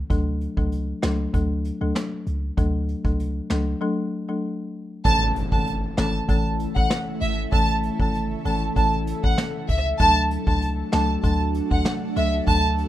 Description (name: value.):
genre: dancehall.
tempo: 97 BPM.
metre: 4/4.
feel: straight.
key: A major.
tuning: A4 = 438 Hz.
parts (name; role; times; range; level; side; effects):
clean 808-style bass; bass; 0.0-12.8 s; G#1 to D2; -25 LUFS; equal; none.
folk marimba with medium mallets; accompaniment; 0.1-12.6 s; E3 to A4; -27 LUFS; left 3 dB; none.
vintage brush drum kit; drums; 0.1-12.9 s; hi-hat, kick drum, rim click, snare drum; -25 LUFS; equal; none.
warm symphonic violin section; melody; 5.0-12.6 s; E5 to A5; -24 LUFS; right 1 dB; none.
ethereal airy pad; sustained chords; 5.8-12.9 s; C#3 to A4; -32 LUFS; right 3 dB; ensemble chorus, built-in reverb, phaser, sidechain pumping.
impact; sound effects; 5.1-7.5 s; none; -32 LUFS; equal; none.
room: little or no reverb.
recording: rough home demo mix.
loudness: -20 LUFS.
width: side -13 dB against mid.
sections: 0.0-5.1 A section; 5.1-12.9 B section.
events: break 3.8-5.1; impact 5.1-7.5.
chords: 0.1 D; 5.1 A; 10.0 D.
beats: | 0.10 0.72 1.34 1.96 | 2.58 3.19 3.81 4.43 | 5.05 5.67 6.29 6.91 | 7.53 8.14 8.76 9.38 | 10.00 10.62 11.24 11.86 | 12.47.